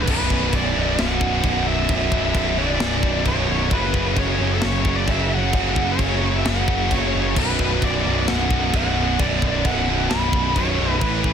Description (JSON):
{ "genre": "heavy metal", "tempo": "132 BPM", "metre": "4/4", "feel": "straight", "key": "B minor", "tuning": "A4 = 436 Hz", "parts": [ { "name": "high-gain lead guitar", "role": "melody", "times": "0.0-11.3 s", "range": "A4 to B5", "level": "-26 LUFS", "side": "equal", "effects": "distortion" }, { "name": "heavy high-gain guitar", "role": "riff", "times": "0.0-11.3 s", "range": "B1 to E3", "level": "-24 LUFS", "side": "left 16 dB", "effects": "distortion" }, { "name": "heavy high-gain guitar", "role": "riff", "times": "0.0-11.3 s", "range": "B1 to A3", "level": "-24 LUFS", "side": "right 13 dB", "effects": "distortion" }, { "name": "growling picked electric bass", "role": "bass", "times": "0.0-11.3 s", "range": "B0 to A1", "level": "-24 LUFS", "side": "left 1 dB", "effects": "overdrive" }, { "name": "tight metal drum kit", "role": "drums", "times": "0.1-11.3 s", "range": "china cymbal, crash cymbal, kick drum, snare drum", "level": "-24 LUFS", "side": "equal", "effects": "none" } ], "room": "small room ambience", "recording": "dense, heavily limited modern master", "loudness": "-18 LUFS", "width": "side -8 dB against mid", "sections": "0.1-11.3 A section", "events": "none", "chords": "0.1 Bm; 3.7 F#5; 7.4 Bm" }